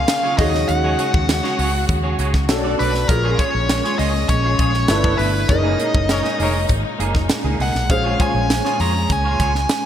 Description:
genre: polished 1980s jazz-funk pop.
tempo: 100 BPM.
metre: 4/4.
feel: straight.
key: Bb minor.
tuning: A4 = 441 Hz.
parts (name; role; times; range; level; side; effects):
nasal lead guitar with a parked wah; melody; 0.0-9.9 s; Bb4 to Bb5; -22 LUFS; equal; overdrive, digital delay.
warm grand piano; accompaniment; 0.0-9.9 s; F3 to Db5; -25 LUFS; left 1 dB; ensemble chorus.
rich studio string section; sustained chords; 0.0-9.9 s; Bb2 to Ab4; -26 LUFS; left 1 dB; none.
vintage muted fingered electric bass; bass; 0.0-9.6 s; F1 to F2; -21 LUFS; equal; none.
semi-hollow electric guitar; riff; 0.1-9.7 s; Bb3 to D5; -27 LUFS; right 4 dB; ensemble chorus.
crisp fusion drum kit; drums; 0.1-9.8 s; hi-hat, kick drum, snare drum; -22 LUFS; equal; none.
warm horn section; second line; 6.1-6.6 s; Ab4 to Db5; -28 LUFS; left 3 dB; none.
room: moderate lush hall reverb, RT60 2.5 s.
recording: bright 1980s-style digital production.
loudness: -16 LUFS.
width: side -10 dB against mid.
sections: 0.0-9.9 A section.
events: band accent 5.5-7.9.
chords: 0.4 Ebm7; 2.5 Bm7; 3.1 Bbm7; 4.9 G69; 5.5 Gb69; 7.9 Bbm7.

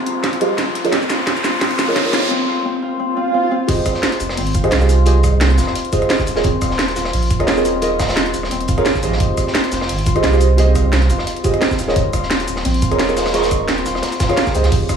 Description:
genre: liquid drum and bass.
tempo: 174 BPM.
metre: 4/4.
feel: swing 54% on 16ths.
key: unclear.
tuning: A4 = 440 Hz.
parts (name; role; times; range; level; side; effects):
deep mellow chord stab; accompaniment; 0.0-15.0 s; F4 to Db6; -20 LUFS; right 2 dB; chorus, tape echo.
Celtic harp; arpeggios; 0.0-15.0 s; C4 to F4; -22 LUFS; left 3 dB; low-pass filter, digital delay.
riser and swell; sound effects; 0.0-3.7 s; none; -22 LUFS; right 2 dB; none.
drum and bass drum kit; drums; 0.1-15.0 s; crash cymbal, hi-hat, rim click, shaker, snare drum; -21 LUFS; right 2 dB; none.
electronic kick drum; drums; 0.2-15.0 s; none; -20 LUFS; right 1 dB; high-pass filter on kick, high-pass filter on room.
warm sub bass; bass; 3.7-14.9 s; Eb1 to Db2; -18 LUFS; right 1 dB; none.
crunchy breakbeat drum kit; drums; 3.7-15.0 s; hi-hat, snare drum; -26 LUFS; right 1 dB; high-pass filter on hats, high-pass filter on snare, high-pass filter on room.
room: moderate digital room reverb, RT60 1.0 s, small room ambience.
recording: studio reverb.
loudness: -14 LUFS.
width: side -7 dB against mid.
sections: 0.0-3.7 A section; 3.7-15.0 B section.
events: build-up 0.0-3.7; drum fill 0.0-2.3; riser 0.0-2.3; filter sweep on synth stab 0.0-3.7; swell 3.1-3.7; drop 3.7-15.0.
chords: 0.0 Fm9; 0.8 Eb7sus4; 3.7 Fm9; 6.3 Eb7sus4; 9.2 Fm9; 11.8 Eb7sus4.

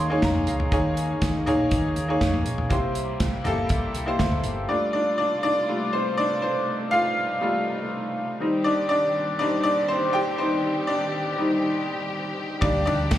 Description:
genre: piano-driven pop.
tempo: 121 BPM.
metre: 4/4.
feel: straight.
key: unclear.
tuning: A4 = 441 Hz.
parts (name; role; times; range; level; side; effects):
bright upright piano; accompaniment; 0.0-13.2 s; C3 to C6; -23 LUFS; left 1 dB; slapback echo.
warm studio string section; sustained chords; 0.0-13.2 s; C3 to G4; -32 LUFS; equal; none.
hollow-body short-scale picked electric bass; bass; 0.0-4.6, 12.6-13.2 s; G1 to F2; -29 LUFS; right 1 dB; none.
natural country drum kit; drums; 0.2-4.6, 12.6-13.2 s; hi-hat, kick drum, ride cymbal, snare drum, toms; -26 LUFS; equal; none.
room: moderate digital room reverb, RT60 1.1 s, small room ambience.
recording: live gig heard through the venue's PA, club ambience.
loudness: -22 LUFS.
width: side -12 dB against mid.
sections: 0.0-4.7 A section; 4.7-13.2 B section.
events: upright piano fill 0.0-0.7; upright piano solo 4.7-13.2.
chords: 0.0 Eb7sus4; 2.7 C7; 4.7 Fadd9; 8.4 Cm; 12.6 Gm/D.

